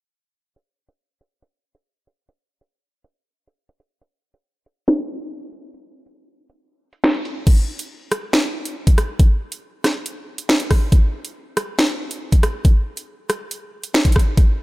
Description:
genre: hip hop.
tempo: 139 BPM.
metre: 4/4.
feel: half-time.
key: none.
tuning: none.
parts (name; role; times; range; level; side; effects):
drill drum kit; drums; 0.6-14.5 s; crash cymbal, finger snaps, hi-hat, kick drum, rim click, snare drum; -16 LUFS; equal; none.
room: light reverb, digital ambience.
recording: low-pass filter.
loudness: -17 LUFS.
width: side -20 dB against mid.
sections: 0.6-7.5 A section; 7.5-14.6 B section.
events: kick muted 6.6-7.5.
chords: none.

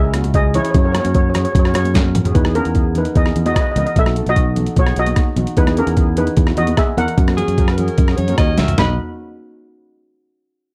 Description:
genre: calypso.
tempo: 149 BPM.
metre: 4/4.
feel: straight.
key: B major.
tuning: A4 = 435 Hz.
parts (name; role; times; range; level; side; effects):
steel pan; melody; 0.0-9.0 s; C#4 to B5; -23 LUFS; equal; none.
steel pan; accompaniment; 0.0-9.0 s; B3 to C#5; -29 LUFS; equal; none.
modern bright fingered electric bass; bass; 0.0-9.0 s; B1 to F#2; -21 LUFS; equal; none.
boom bap sampler-style drum kit; drums; 0.1-8.9 s; hi-hat, kick drum, rim click, snare drum, toms; -18 LUFS; equal; none.
congas; percussion; 0.1-9.0 s; none; -29 LUFS; equal; none.
breathy alto saxophone; second line; 7.4-9.0 s; G#4 to E5; -25 LUFS; equal; none.
room: studio reverb.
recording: dry, close 1970s-style studio recording.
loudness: -16 LUFS.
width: mono.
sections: 0.0-2.4 A section; 2.4-8.8 B section; 8.8-10.4 C section.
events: drum fill 2.0-2.4, 8.6.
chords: 0.0 C#m; 0.7 F#add9; 2.4 Emaj7; 4.0 B7; 5.6 Emaj7; 7.2 F#; 8.8 B.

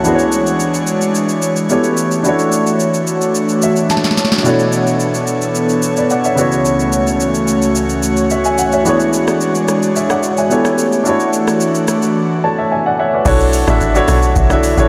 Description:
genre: amapiano.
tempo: 109 BPM.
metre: 4/4.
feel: straight.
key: B dorian.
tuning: A4 = 440 Hz.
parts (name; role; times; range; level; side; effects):
warm baby grand piano; accompaniment; 0.0-14.9 s; B2 to A5; -18 LUFS; equal; subtle chorus.
airy breathy pad; sustained chords; 0.0-13.2 s; C#2 to C#5; -18 LUFS; equal; chorus, sidechain pumping.
booming analog drum machine; drums; 0.0-14.9 s; crash cymbal, hi-hat, kick drum, rim click, shaker, snare drum; -23 LUFS; equal; none.
woody log drum bass; bass; 13.3-14.9 s; A1 to B1; -16 LUFS; equal; none.
room: wet huge ambient reverb, RT60 4.5 s.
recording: dreamy mix soaked in reverb.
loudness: -14 LUFS.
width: mono.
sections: 0.0-13.3 A section; 13.3-14.9 B section.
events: grand piano fill 3.3-4.5, 12.2-13.3; drum fill 3.9-4.5; drop 13.3-14.9.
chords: 0.0 E13; 1.7 A7; 2.2 Dmaj9; 4.5 Bm11; 6.4 A6/C#; 8.9 E13; 10.5 A7; 11.1 Dmaj9; 13.3 Bm11.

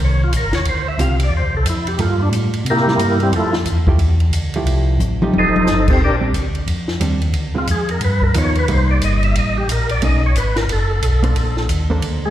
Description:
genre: soul jazz organ trio.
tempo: 179 BPM.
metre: 4/4.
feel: swing 62% on 8ths.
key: F major, Bb major from 6.0 s.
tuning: A4 = 439 Hz.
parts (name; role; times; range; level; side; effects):
percussive tonewheel organ; melody; 0.0-12.3 s; G3 to F5; -20 LUFS; equal; slow rotary speaker, overdrive, chorus vibrato, slapback echo.
hollow-body jazz guitar; accompaniment; 0.0-12.3 s; D3 to C5; -24 LUFS; right 3 dB; slapback echo.
mellow tonewheel organ; bass; 0.0-12.3 s; F1 to C3; -17 LUFS; equal; chorus vibrato, slow rotary speaker.
compact cocktail drum kit; drums; 0.3-12.1 s; crash cymbal, hi-hat, kick drum, ride cymbal, snare drum, toms; -23 LUFS; left 1 dB; none.
room: light reverb.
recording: live gig heard through the venue's PA, recital hall reverb.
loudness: -14 LUFS.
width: side -12 dB against mid.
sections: 0.0-6.0 A section; 6.0-12.3 A section.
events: tonewheel organ solo 0.0-12.3; drum fill 5.0-5.7.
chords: 0.0 Eb7#11; 0.7 Dm11; 2.0 Gm9; 2.7 C7; 3.3 Fmaj9; 5.3 F9; 6.0 Bb69; 7.3 Dm7b5; 8.0 Gaug7; 8.7 Cm7; 10.0 B9; 11.4 Bbmaj9.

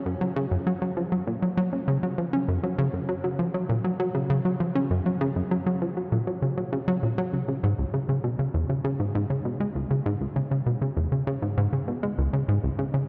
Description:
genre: ambient.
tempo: 99 BPM.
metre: 4/4.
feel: straight.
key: C# minor from 7.3 s.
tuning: A4 = 441 Hz.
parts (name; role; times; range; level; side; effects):
plucky analog bass; solo; 0.1-13.0 s; C#2 to C#4; -26 LUFS; equal; analog delay.
room: wet cathedral reverb, RT60 5.3 s.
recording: in a vast, echoing space.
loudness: -27 LUFS.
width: mono.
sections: 0.0-7.3 A section; 7.3-13.1 B section.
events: none.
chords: none.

